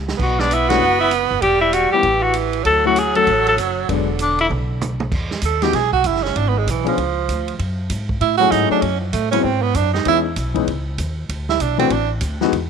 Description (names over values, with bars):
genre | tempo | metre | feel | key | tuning
jazz, small-group swing and bop | 194 BPM | 4/4 | swing 62% on 8ths | E major from 5.1 s | A4 = 440 Hz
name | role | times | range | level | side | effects
upright bass | bass | 0.0-12.7 s | E1 to A2 | -23 LUFS | equal | none
vintage drum kit | drums | 0.1-12.6 s | crash cymbal, hi-hat, kick drum, ride cymbal, snare drum, toms | -28 LUFS | right 3 dB | none
warm tenor saxophone | melody | 0.2-4.5 s | D4 to A4 | -16 LUFS | left 3 dB | none
breathy tenor saxophone | second line | 0.2-12.1 s | D3 to A4 | -20 LUFS | right 12 dB | none
warm concert grand piano | accompaniment | 0.7-12.5 s | E3 to G#4 | -21 LUFS | left 14 dB | none
room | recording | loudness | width
light reverb, studio ambience | 1960s-style stereo with parts hard left and right | -16 LUFS | side -6 dB against mid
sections
0.0-5.1 A section; 5.1-12.7 B section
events
drum fill 0.0, 4.5-5.1; band accent 0.6; tenor saxophone solo 5.1-12.7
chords
0.2 Bsus4; 1.4 Em; 2.0 A5; 2.7 Dmaj7; 3.9 E7; 5.1 Emaj7sus2; 6.4 G#dim; 7.0 C#; 7.6 F#m7; 8.8 F#m11; 9.4 G#7#9; 10.1 C#m9; 11.3 Dadd9